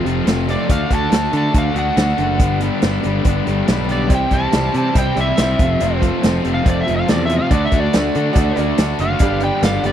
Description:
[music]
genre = classic rock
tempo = 141 BPM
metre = 4/4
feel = straight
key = unclear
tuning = A4 = 440 Hz
[part]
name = overdriven slide guitar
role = melody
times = 0.0-9.9 s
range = D5 to A5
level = -21 LUFS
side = equal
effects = slapback echo
[part]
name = crunchy overdriven guitar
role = riff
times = 0.0-9.9 s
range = F2 to G4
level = -22 LUFS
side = left 14 dB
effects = none
[part]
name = distorted electric guitar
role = riff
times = 0.0-9.9 s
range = F2 to D4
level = -23 LUFS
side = right 11 dB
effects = distortion
[part]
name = modern bright picked electric bass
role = bass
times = 0.1-9.9 s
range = F1 to D3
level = -21 LUFS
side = equal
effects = none
[part]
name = vintage drum kit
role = drums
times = 0.1-9.9 s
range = hi-hat, kick drum, snare drum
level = -18 LUFS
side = equal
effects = none
[part]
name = bright grand piano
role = accompaniment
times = 4.1-9.9 s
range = E4 to D5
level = -26 LUFS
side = right 6 dB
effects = none
[part]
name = cowbell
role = percussion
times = 4.1-9.7 s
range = none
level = -33 LUFS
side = left 16 dB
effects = none
[sound]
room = little or no reverb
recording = dry, close 1970s-style studio recording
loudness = -14 LUFS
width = side -10 dB against mid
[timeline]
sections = 0.0-9.9 A section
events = electric slide guitar solo 0.0-9.9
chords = 0.0 F; 0.7 D; 2.4 G; 4.1 C; 5.6 F; 7.5 D; 9.2 G

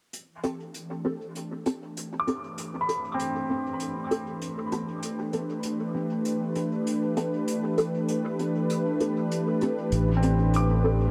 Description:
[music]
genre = ambient dub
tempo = 98 BPM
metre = 4/4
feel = swing 56% on 16ths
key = A minor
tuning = A4 = 443 Hz
[part]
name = warm analog pad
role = sustained chords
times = 0.1-11.1 s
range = E3 to B4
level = -31 LUFS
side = equal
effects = chorus
[part]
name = hi-hat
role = drums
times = 0.1-10.7 s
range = none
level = -44 LUFS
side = equal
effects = dub echo
[part]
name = filtered dub chord stab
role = stabs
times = 0.4-11.1 s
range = B3 to A4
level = -34 LUFS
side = equal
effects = phaser, ensemble chorus, cassette tape, dub echo
[part]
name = felt-muted upright piano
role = arpeggios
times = 2.2-5.6, 10.2-11.1 s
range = C4 to D6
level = -35 LUFS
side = equal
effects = low-pass filter, dub echo
[part]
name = fingered electric bass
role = bass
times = 9.9-11.1 s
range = A1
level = -25 LUFS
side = equal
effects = none
[sound]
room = moderate huge ambient reverb, RT60 7.4 s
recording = none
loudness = -28 LUFS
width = mono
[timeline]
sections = 0.1-11.1 A section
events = filter sweep on analog synth pad 0.1-11.1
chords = 0.1 Am7

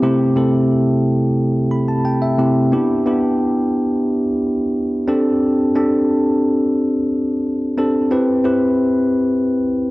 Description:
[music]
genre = pop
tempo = 89 BPM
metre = 4/4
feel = straight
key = unclear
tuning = A4 = 440 Hz
[part]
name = bell-like tine electric piano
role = solo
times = 0.0-9.9 s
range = C3 to B5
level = -15 LUFS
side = equal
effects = cassette tape, analog delay
[sound]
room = wet spring reverb, RT60 2.6 s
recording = home recording on cassette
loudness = -15 LUFS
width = side -19 dB against mid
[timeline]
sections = 0.0-9.9 A section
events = tine electric piano fill 1.4-2.7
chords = 0.0 Am7/C; 2.7 Em7; 5.1 D7sus4; 8.1 Cmaj7

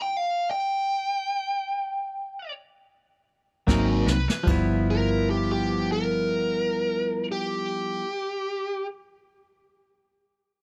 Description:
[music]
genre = straight-eighth soul blues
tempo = 74-91 BPM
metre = 4/4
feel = swing 55% on 16ths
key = G mixolydian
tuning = A4 = 440 Hz
[part]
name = smooth overdriven lead guitar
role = melody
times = 0.0-8.9 s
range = Gb4 to G5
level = -29 LUFS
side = equal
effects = none
[part]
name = barky tine electric piano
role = accompaniment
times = 3.7-8.1 s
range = F3 to E4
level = -30 LUFS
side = equal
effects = overdrive
[part]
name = direct-recorded clean electric guitar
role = stabs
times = 3.7-8.1 s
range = F3 to Bb4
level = -37 LUFS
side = equal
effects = spring reverb, slapback echo
[part]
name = vintage muted fingered electric bass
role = bass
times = 3.7-8.0 s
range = G1 to C2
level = -30 LUFS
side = equal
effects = none
[part]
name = jazz brush drum kit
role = drums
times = 3.7-4.7 s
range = crash cymbal, kick drum, snare drum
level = -27 LUFS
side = equal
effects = none
[sound]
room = studio reverb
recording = none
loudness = -26 LUFS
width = mono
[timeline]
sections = 0.0-4.5 A section; 4.5-7.7 B section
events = slowing down 0.0-4.5; stop 0.0-3.7; drum fill 3.7-4.5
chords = 0.0 N.C.; 3.7 Ab9; 4.5 G6

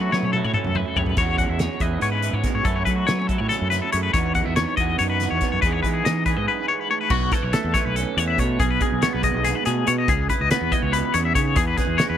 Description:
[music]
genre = math rock and midwest emo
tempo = 283 BPM (eighths)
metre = 7/8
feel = straight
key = E major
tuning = A4 = 440 Hz
[part]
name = electric guitar through a small old amp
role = accompaniment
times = 0.0-12.2 s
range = E2 to G#4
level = -27 LUFS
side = right 13 dB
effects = none
[part]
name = twangy electric guitar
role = arpeggios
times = 0.0-12.2 s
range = F#4 to F#5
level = -23 LUFS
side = left 7 dB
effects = tremolo, slapback echo
[part]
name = fuzz fingered electric bass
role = bass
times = 0.0-12.2 s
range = B1 to F#3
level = -25 LUFS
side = equal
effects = overdrive
[part]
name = loose indie drum kit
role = drums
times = 0.1-12.1 s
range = crash cymbal, hi-hat, kick drum, snare drum, toms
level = -25 LUFS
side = equal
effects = none
[sound]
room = little or no reverb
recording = none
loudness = -19 LUFS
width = side -10 dB against mid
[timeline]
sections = 0.0-7.1 A section; 7.1-12.2 B section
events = drum fill 0.0-1.2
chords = 0.0 F#m7; 1.2 E69; 2.7 F#m7; 4.1 C#m11/E; 5.6 Emaj7; 7.1 B9sus4; 8.6 G#m/B; 10.1 C#m9; 11.6 E6

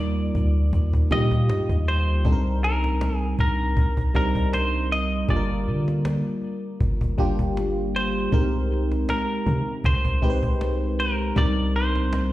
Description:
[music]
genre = contemporary R&B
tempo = 79 BPM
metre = 4/4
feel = swing 54% on 16ths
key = C minor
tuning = A4 = 440 Hz
[part]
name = semi-hollow electric guitar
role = melody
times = 0.0-12.3 s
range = Bb4 to Eb5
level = -28 LUFS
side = equal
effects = digital delay
[part]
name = FM electric piano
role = accompaniment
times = 0.0-12.3 s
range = G3 to C5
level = -26 LUFS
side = equal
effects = chorus, phaser
[part]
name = warm 808-style bass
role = bass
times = 0.0-12.3 s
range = G1 to D3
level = -23 LUFS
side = equal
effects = none
[part]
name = cajon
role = drums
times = 0.3-12.3 s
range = none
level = -28 LUFS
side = equal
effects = none
[sound]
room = little or no reverb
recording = played on a big sound system in a bare room, stone room reverb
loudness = -20 LUFS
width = side -15 dB against mid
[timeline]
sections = 0.0-12.3 A section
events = none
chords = 0.0 Ebmaj9; 2.2 Cm9; 5.3 Gm7; 8.3 Abmaj9/C; 11.4 Cm9

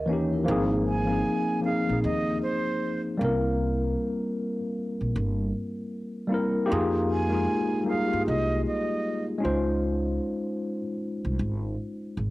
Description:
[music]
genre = lo-fi hip hop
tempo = 77 BPM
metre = 4/4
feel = swing 62% on 16ths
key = unclear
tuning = A4 = 440 Hz
[part]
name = vibraphone with soft mallets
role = second line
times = 0.0-0.7 s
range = Fb4 to Db5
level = -34 LUFS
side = right 3 dB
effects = low-pass filter, analog delay
[part]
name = upright bass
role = bass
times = 0.0-12.3 s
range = G1 to G2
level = -29 LUFS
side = equal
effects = none
[part]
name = mellow tine electric piano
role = accompaniment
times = 0.1-12.2 s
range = Fb3 to C5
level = -26 LUFS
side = left 1 dB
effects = medium stereo tremolo, cassette tape, low-pass filter
[part]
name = breathy concert flute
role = melody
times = 0.9-9.3 s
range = C5 to Ab5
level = -31 LUFS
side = right 3 dB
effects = low-pass filter, cassette tape
[sound]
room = moderate spring reverb, RT60 1.3 s, small room ambience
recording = home recording on cassette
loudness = -25 LUFS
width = side -18 dB against mid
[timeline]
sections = 0.0-12.3 A section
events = none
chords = 0.5 Ab69; 3.2 C7; 6.7 Fm11; 9.4 Dbmaj9

